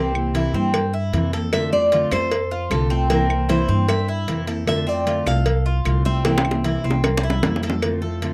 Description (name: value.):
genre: latin, Cuban son and guajira.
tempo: 152 BPM.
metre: 4/4.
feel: straight.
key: F major.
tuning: A4 = 440 Hz.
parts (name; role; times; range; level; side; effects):
nylon-string guitar; melody; 0.0-7.2 s; G4 to F5; -26 LUFS; equal; slapback echo.
fingerpicked steel-string acoustic guitar; accompaniment; 0.0-8.3 s; C3 to F4; -27 LUFS; equal; none.
Cuban tres; arpeggios; 0.0-8.3 s; C4 to A4; -30 LUFS; equal; none.
upright bass; bass; 0.0-8.3 s; C2 to G2; -25 LUFS; equal; none.
claves; percussion; 0.2-8.0 s; none; -32 LUFS; equal; none.
cowbell and bongos; percussion; 0.3-8.3 s; none; -27 LUFS; equal; none.
room: little or no reverb.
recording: dry, close 1970s-style studio recording.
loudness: -20 LUFS.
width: mono.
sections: 0.0-7.8 A section.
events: drum fill 6.2-7.8.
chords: 0.0 C7; 1.5 F6; 3.1 C7; 4.7 F6; 6.2 C7; 7.8 F6.